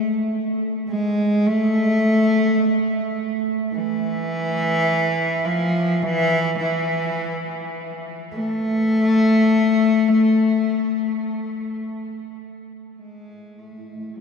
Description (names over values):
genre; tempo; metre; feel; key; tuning
ambient; 52 BPM; 4/4; straight; unclear; A4 = 440 Hz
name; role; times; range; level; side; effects
rich cello; melody; 0.0-14.2 s; E3 to A3; -19 LUFS; left 1 dB; tape echo
granular cloud pad; sustained chords; 13.6-14.2 s; A3 to A5; -38 LUFS; right 1 dB; built-in reverb
room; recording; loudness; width
wet huge ambient reverb, RT60 6.9 s; in a vast, echoing space; -18 LUFS; side -6 dB against mid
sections
0.0-13.0 A section; 13.0-14.2 B section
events
none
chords
0.0 N.C.; 13.0 A5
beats
0.32 1.46 2.60 | 3.73 4.87 6.01 7.16 | 8.31 9.46 10.62 11.79 | 12.96 14.12